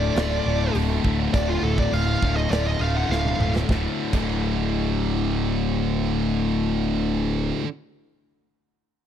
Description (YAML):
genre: heavy metal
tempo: 102 BPM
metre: 4/4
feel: straight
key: D minor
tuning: A4 = 438 Hz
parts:
  - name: high-gain lead guitar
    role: melody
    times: 0.0-3.5 s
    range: F4 to F#5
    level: -27 LUFS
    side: right 1 dB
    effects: distortion, slapback echo
  - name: heavy high-gain guitar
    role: riff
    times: 0.0-7.7 s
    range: D2 to F4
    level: -29 LUFS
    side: right 12 dB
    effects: distortion
  - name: sludgy distorted guitar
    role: riff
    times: 0.0-7.7 s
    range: D2 to A3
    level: -26 LUFS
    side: left 10 dB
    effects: overdrive
  - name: fuzz picked electric bass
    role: bass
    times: 0.0-7.5 s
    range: D1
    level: -25 LUFS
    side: right 1 dB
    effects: overdrive
  - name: modern studio drum kit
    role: drums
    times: 0.2-4.3 s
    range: crash cymbal, hi-hat, kick drum, snare drum, toms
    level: -26 LUFS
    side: right 1 dB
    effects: none
room: small room ambience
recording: dry, close 1970s-style studio recording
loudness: -21 LUFS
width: side -9 dB against mid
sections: 0.0-3.7 A section; 3.7-6.0 B section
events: lead electric guitar solo 0.0-3.7; drum fill 3.1-3.7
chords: 0.0 Dm; 3.7 D5